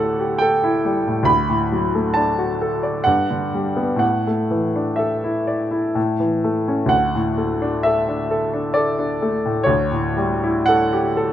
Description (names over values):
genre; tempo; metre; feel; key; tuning
classical, romantic nocturne for solo piano; 56-70 BPM; 3/4; rubato; D major; A4 = 440 Hz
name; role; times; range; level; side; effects
clear grand piano; solo; 0.0-11.3 s; D2 to B5; -17 LUFS; equal; none
room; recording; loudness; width
moderate recital hall reverb, RT60 1.6 s; close, detailed microphones; -17 LUFS; side -11 dB against mid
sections
0.0-11.3 A section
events
none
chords
0.0 A7/D; 1.3 D; 3.1 G; 4.0 Asus4; 6.0 A; 6.9 D; 9.7 A7/D